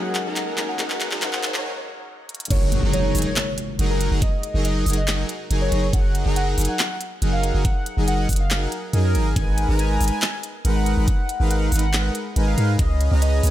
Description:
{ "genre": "future bass", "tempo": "140 BPM", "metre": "4/4", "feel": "half-time", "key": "F# major", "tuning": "A4 = 440 Hz", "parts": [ { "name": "warm velvety synth lead", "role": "melody", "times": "0.0-13.5 s", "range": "A#4 to G#5", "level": "-29 LUFS", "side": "equal", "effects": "chorus, sidechain pumping, tape echo" }, { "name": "felt-muted upright piano", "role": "accompaniment", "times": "0.0-2.5 s", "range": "F#3 to D#4", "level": "-34 LUFS", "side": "left 4 dB", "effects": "sidechain pumping, tape echo" }, { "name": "shimmering ambient pad", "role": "sustained chords", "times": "0.2-2.5 s", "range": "C#3 to F#4", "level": "-44 LUFS", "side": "equal", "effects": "none" }, { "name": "soft supersaw", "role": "riff", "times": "0.0-13.5 s", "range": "F#3 to A#5", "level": "-26 LUFS", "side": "equal", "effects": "sidechain pumping" }, { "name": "riser and impact", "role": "sound effects", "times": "0.0-4.2 s", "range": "none", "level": "-31 LUFS", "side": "equal", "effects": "none" }, { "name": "trap drum kit", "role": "drums", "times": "0.1-13.5 s", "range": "crash cymbal, handclaps, hi-hat", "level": "-26 LUFS", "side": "equal", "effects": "high-pass filter on snare, small room ambience, high-pass filter on hats, high-pass filter on cymbals" }, { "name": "long sustained 808-style bass", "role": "bass", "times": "2.5-13.5 s", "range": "F#1 to G#2", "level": "-20 LUFS", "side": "equal", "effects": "sidechain pumping" }, { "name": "electronic kick drum", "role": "drums", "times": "2.5-12.9 s", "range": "none", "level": "-21 LUFS", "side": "equal", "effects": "small room ambience" } ], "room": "digital ambience", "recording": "high-pass filter", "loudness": "-19 LUFS", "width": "side -13 dB against mid", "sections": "0.0-2.5 A section; 2.5-13.5 B section", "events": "build-up 0.0-2.5; drum fill 0.0-1.6, 2.3; riser 0.0-1.6; filter sweep on supersaw synth 0.0-2.5; filter sweep on soft synth lead 0.0-2.5; break 1.6-2.5; drop 2.5-13.5; impact 2.5-4.2", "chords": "0.0 F#6; 9.4 G#m7; 12.8 C#9", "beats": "0.36 | 0.79 1.22 1.65 2.08 | 2.50 2.93 3.36 3.79 | 4.22 4.65 5.08 5.50 | 5.93 6.36 6.79 7.22 | 7.65 8.08 8.51 8.93 | 9.36 9.79 10.22 10.65 | 11.08 11.51 11.93 12.36 | 12.79 13.22" }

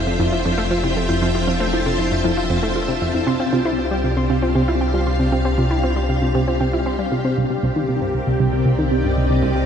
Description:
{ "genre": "ambient, sequencer-driven space music", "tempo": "117 BPM", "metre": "4/4", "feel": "straight", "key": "unclear", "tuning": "A4 = 440 Hz", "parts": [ { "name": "string machine, full ensemble", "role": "sustained chords", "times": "0.0-9.7 s", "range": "C4 to A5", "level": "-23 LUFS", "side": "equal", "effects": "ensemble chorus" }, { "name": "analog pluck", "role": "riff", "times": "0.0-9.7 s", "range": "C2 to E4", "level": "-20 LUFS", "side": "equal", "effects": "chorus, ping-pong delay" }, { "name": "round analog bass", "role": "bass", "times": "0.0-9.7 s", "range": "F1 to C2", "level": "-24 LUFS", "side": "equal", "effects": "none" }, { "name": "wind-like tuned noise texture", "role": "texture", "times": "0.0-7.4 s", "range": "D4 to D5", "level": "-33 LUFS", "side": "right 2 dB", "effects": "none" }, { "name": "warbly dusty pluck", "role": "arpeggios", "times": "0.1-9.7 s", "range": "Bb3 to C6", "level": "-27 LUFS", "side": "moving between left 6 dB and right 2 dB", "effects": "chorus, auto-pan, ping-pong delay" } ], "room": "moderate huge ambient reverb, RT60 8.8 s", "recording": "nothing above 10.4 kHz", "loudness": "-17 LUFS", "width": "side -8 dB against mid", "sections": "0.0-7.4 A section; 7.4-9.7 B section", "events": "none", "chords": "0.0 Fmaj7; 3.3 Csus4; 7.4 Cm7", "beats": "0.20 0.71 | 1.22 1.73 2.25 2.76 | 3.27 3.79 4.30 4.81 | 5.32 5.84 6.35 6.86 | 7.38 7.89 8.40 8.91 | 9.43" }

